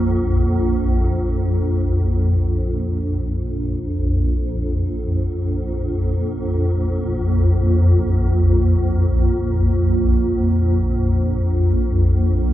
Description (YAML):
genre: ambient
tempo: free time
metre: none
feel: none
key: unclear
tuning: A4 = 441 Hz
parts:
  - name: swarming drone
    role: solo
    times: 0.0-12.5 s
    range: Bb1 to F2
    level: -16 LUFS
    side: equal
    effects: built-in reverb, tape echo
room: wet cathedral reverb, RT60 5.4 s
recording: in a vast, echoing space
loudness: -16 LUFS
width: side -14 dB against mid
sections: 0.0-2.3 A section; 2.3-12.5 B section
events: none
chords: 0.0 Bb5